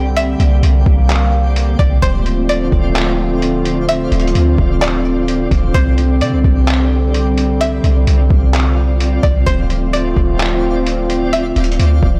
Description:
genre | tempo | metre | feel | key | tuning
hip hop, atmospheric cloud-rap | 129 BPM | 4/4 | half-time | D minor | A4 = 440 Hz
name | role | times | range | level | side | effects
warbly tape-like pad | sustained chords | 0.0-12.2 s | D3 to F4 | -20 LUFS | equal | chorus, built-in reverb, sidechain pumping
clean 808-style bass | bass | 0.0-12.2 s | D1 to C3 | -17 LUFS | equal | none
twinkling granular texture | texture | 0.0-12.2 s | C4 to D5 | -28 LUFS | equal | built-in reverb
string-like resonator pluck | melody | 0.2-11.8 s | C5 to E5 | -23 LUFS | equal | chorus, phaser, digital delay
trip hop sampler-style drum kit | drums | 0.2-12.1 s | handclaps, hi-hat, kick drum | -21 LUFS | equal | overdrive
room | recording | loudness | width
light reverb | blown-out, overdriven recording, overdrive | -14 LUFS | mono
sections
0.0-12.2 A section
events
none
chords
0.0 Csus2; 2.0 Dm7; 5.7 Csus2; 9.5 Dm7

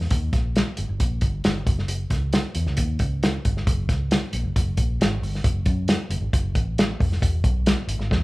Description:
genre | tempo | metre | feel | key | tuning
uptempo 1960s-style soul | 135 BPM | 4/4 | straight | unclear | A4 = 440 Hz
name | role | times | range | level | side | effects
vintage muted fingered electric bass | bass | 0.0-8.2 s | E1 to F#2 | -25 LUFS | equal | none
warm soul drum kit | drums | 0.0-8.2 s | hi-hat, kick drum, snare drum | -22 LUFS | equal | none
room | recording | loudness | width
light reverb | band playing live in one room, cassette tape | -20 LUFS | side -20 dB against mid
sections
0.0-8.2 A section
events
none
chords
none

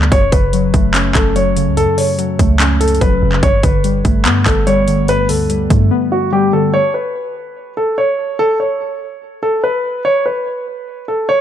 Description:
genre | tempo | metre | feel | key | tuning
hip hop, trap | 145 BPM | 4/4 | half-time | unclear | A4 = 440 Hz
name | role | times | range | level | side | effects
warbly lo-fi synth keys | accompaniment | 0.0-6.8 s | F#2 to C#4 | -16 LUFS | left 2 dB | chorus
clean 808-style bass | bass | 0.0-5.9 s | F#1 to G2 | -16 LUFS | equal | none
trap drum kit | drums | 0.0-5.8 s | handclaps, hi-hat, kick drum | -15 LUFS | equal | overdrive, vintage 12-bit sampler grit
dark concert grand piano | melody | 0.1-11.4 s | F#4 to C#5 | -16 LUFS | equal | none
room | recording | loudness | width
digital ambience | dark, warm production | -12 LUFS | side -10 dB against mid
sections
0.0-6.7 A section; 6.7-11.4 B section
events
none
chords
0.1 F#m; 3.4 Gadd9; 6.7 N.C.

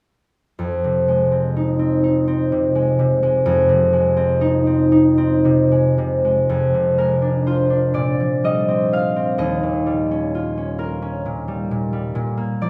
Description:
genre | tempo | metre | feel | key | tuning
classical, solo harp piece | 36-44 BPM (dotted quarters) | 6/8 | rubato | F dorian | A4 = 441 Hz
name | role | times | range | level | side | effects
concert harp | solo | 0.6-12.7 s | Eb2 to F5 | -18 LUFS | equal | none
room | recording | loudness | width
wet recital hall reverb, RT60 1.5 s | recorded in a church or concert hall | -18 LUFS | mono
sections
0.6-6.5 A section; 6.5-12.7 B section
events
none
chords
0.6 Fm7; 6.5 Fm6; 8.0 Bb69; 9.4 Eb9; 12.1 Bb

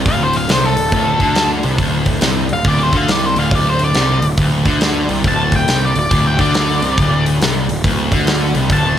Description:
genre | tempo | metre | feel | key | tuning
blues rock power trio and southern rock | 139 BPM | 4/4 | swing 64% on 8ths | D minor | A4 = 440 Hz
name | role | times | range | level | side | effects
overdriven electric guitar | riff | 0.0-9.0 s | D2 to D3 | -17 LUFS | left 1 dB | none
fuzz picked electric bass | bass | 0.0-9.0 s | D1 to D2 | -20 LUFS | equal | overdrive
octave-fuzz lead guitar | melody | 0.1-9.0 s | A4 to A5 | -18 LUFS | left 1 dB | distortion, plate reverb
big rock drum kit | drums | 0.1-8.8 s | hi-hat, kick drum, snare drum | -18 LUFS | equal | none
room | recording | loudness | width
light reverb | none | -12 LUFS | side -10 dB against mid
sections
0.0-9.0 A section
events
none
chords
none

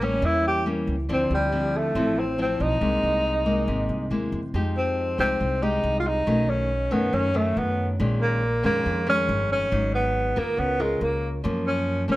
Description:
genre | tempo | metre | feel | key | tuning
bossa nova | 139 BPM | 4/4 | straight | F minor from 4.5 s | A4 = 440 Hz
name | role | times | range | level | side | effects
breathy tenor saxophone | melody | 0.0-12.2 s | G3 to G4 | -24 LUFS | equal | none
mellow hollow concert flute | second line | 0.0-4.1 s | G4 to G5 | -36 LUFS | right 3 dB | none
nylon-string guitar | accompaniment | 0.0-12.2 s | F2 to Bb4 | -26 LUFS | left 1 dB | none
upright bass | bass | 0.0-12.2 s | G1 to F#2 | -28 LUFS | equal | none
room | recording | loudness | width
moderate large studio reverb, RT60 1.3 s | none | -21 LUFS | side -17 dB against mid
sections
0.0-4.5 A section; 4.5-12.2 B section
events
none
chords
0.0 A7b9; 1.1 Dm9; 2.8 C7alt; 4.5 Fm9; 6.3 B9; 8.0 Bbm7; 9.7 Abm7; 10.6 Db6; 11.4 Gbmaj7

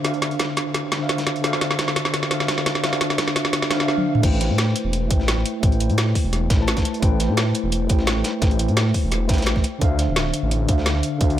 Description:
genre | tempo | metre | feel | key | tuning
liquid drum and bass | 172 BPM | 4/4 | straight | A minor | A4 = 440 Hz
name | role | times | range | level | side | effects
mellow tine electric piano | accompaniment | 0.0-11.4 s | D3 to A5 | -24 LUFS | equal | medium stereo tremolo, tape echo
drum and bass drum kit | drums | 0.0-11.3 s | crash cymbal, hi-hat, snare drum, toms | -23 LUFS | equal | none
dusty soul sampler-style drum kit | drums | 0.0-11.4 s | hi-hat, snare drum | -32 LUFS | right 1 dB | overdrive, high-pass filter on snare, high-pass filter on hats
dark detuned saw bass | bass | 0.1-11.4 s | D1 to A2 | -23 LUFS | equal | high-pass filter
electronic kick drum | drums | 4.2-11.3 s | none | -20 LUFS | equal | none
room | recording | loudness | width
moderate lush hall reverb, RT60 1.8 s, digital ambience | none | -18 LUFS | side -12 dB against mid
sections
0.0-4.2 A section; 4.2-11.4 B section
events
build-up 0.0-4.2; drum fill 0.0-3.9, 3.9-4.2; drop 4.2-11.4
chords
0.0 Dm9; 4.2 Am9; 9.6 Dm9

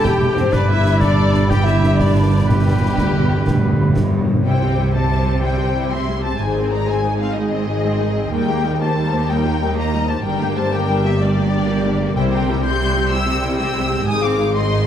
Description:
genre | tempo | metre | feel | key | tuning
cinematic, heroic adventure film score | 124 BPM (dotted quarters) | 12/8 | straight | G major | A4 = 440 Hz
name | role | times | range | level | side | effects
warm symphonic violin section | melody | 0.0-14.9 s | G4 to G6 | -25 LUFS | left 4 dB | none
clear oboe | second line | 0.0-4.2 s | G4 to B4 | -28 LUFS | right 1 dB | none
mellow clarinet | second line | 0.0-4.2 s | G4 | -30 LUFS | left 2 dB | none
mellow hollow large flute ensemble | second line | 0.0-4.3 s | B5 | -28 LUFS | equal | none
warm symphonic violin section | second line | 0.0-14.9 s | G4 to C6 | -27 LUFS | left 3 dB | none
rich symphonic viola section | accompaniment | 0.0-14.9 s | G3 to Ab4 | -25 LUFS | right 1 dB | none
dark French horn section | sustained chords | 0.0-3.9 s | G3 to G4 | -27 LUFS | left 1 dB | none
concert harp | arpeggios | 0.0-14.9 s | E2 to C6 | -25 LUFS | left 6 dB | none
rich symphonic cello section | bass | 0.0-14.9 s | D2 to C3 | -22 LUFS | right 2 dB | none
concert snare drum and concert bass drum | drums | 0.0-4.1 s | none | -23 LUFS | equal | none
rich symphonic double bass section | bass | 0.1-14.9 s | E1 to Eb2 | -21 LUFS | right 2 dB | none
timpani | percussion | 0.5-4.9, 12.2-12.6 s | G2 to C3 | -21 LUFS | left 1 dB | none
room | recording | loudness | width
moderate concert hall reverb, RT60 2.2 s | none | -15 LUFS | side -10 dB against mid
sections
0.0-4.5 A section; 4.5-14.9 B section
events
timpani fill 0.5-4.5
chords
0.0 Em; 0.5 G; 4.5 C; 6.4 Ab; 8.3 Eb; 10.3 Gm; 12.2 C; 14.1 Ab

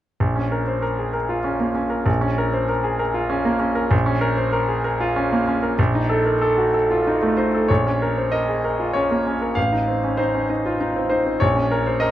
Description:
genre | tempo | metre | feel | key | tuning
classical, virtuoso piano study | 96 BPM | 3/4 | rubato | Bb minor | A4 = 441 Hz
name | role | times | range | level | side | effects
bright concert grand piano | solo | 0.2-12.1 s | A1 to F5 | -18 LUFS | equal | none
room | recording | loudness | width
moderate studio ambience, RT60 0.5 s | dark, warm production | -18 LUFS | side -12 dB against mid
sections
0.2-7.7 A section; 7.7-12.1 B section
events
none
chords
0.2 Bbm; 5.8 F7/Bb; 7.7 Bbm; 9.6 F7/A; 11.4 Bbm

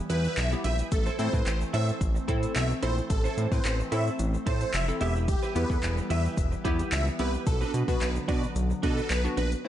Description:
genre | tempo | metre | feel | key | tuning
dance-pop | 110 BPM | 4/4 | straight | E minor | A4 = 440 Hz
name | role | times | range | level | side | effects
hollow square pluck | accompaniment | 0.0-9.7 s | A3 to B4 | -35 LUFS | left 3 dB | chorus, sidechain pumping
airy breathy pad | sustained chords | 0.0-9.7 s | D3 to C4 | -38 LUFS | equal | chorus, sidechain pumping
supersaw chords | melody | 0.1-9.5 s | G4 to E5 | -33 LUFS | equal | sidechain pumping, ping-pong delay
twelve-string electric guitar | riff | 0.1-9.6 s | D4 to C5 | -36 LUFS | right 6 dB | ensemble chorus
fat analog bass | bass | 0.1-9.6 s | E1 to B2 | -28 LUFS | equal | sidechain pumping
deep house drum kit | drums | 0.1-9.6 s | handclaps, hi-hat, kick drum | -30 LUFS | equal | none
tube shaker | percussion | 0.1-9.6 s | none | -50 LUFS | left 8 dB | none
room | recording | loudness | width
light reverb | dark, warm production, nothing above 10.9 kHz | -25 LUFS | side -11 dB against mid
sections
0.0-9.6 A section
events
break 0.0-0.9; drop 0.0-9.6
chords
0.0 Em; 0.9 Am; 5.0 Em; 7.5 Bm

